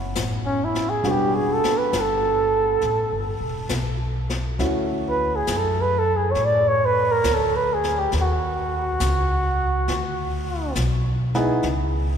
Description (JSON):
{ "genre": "jazz ballad", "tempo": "68 BPM", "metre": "4/4", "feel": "swing 68% on 8ths", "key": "unclear", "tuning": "A4 = 438 Hz", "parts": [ { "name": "warm grand piano", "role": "accompaniment", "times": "0.0-11.7 s", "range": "G3 to G#4", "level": "-27 LUFS", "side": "equal", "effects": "none" }, { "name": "upright bass", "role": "bass", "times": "0.0-12.2 s", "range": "E1 to A2", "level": "-25 LUFS", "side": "equal", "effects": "none" }, { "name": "jazz brush drum kit", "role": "drums", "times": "0.2-12.2 s", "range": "brushed snare drum, hi-hat, snare drum", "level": "-32 LUFS", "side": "left 3 dB", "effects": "none" }, { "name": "breathy flugelhorn", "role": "melody", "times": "0.5-10.8 s", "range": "C#4 to D5", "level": "-22 LUFS", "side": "right 1 dB", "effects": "none" } ], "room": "wet cathedral reverb, RT60 5.0 s", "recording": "recorded in a church or concert hall", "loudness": "-20 LUFS", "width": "side -8 dB against mid", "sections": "0.0-12.2 A section", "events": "flugelhorn solo 0.0-12.2", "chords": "0.0 F#m11; 1.0 Em9; 2.8 Asus2; 4.6 Dmaj7; 8.1 C#sus24; 9.9 Dadd9; 11.6 C#5" }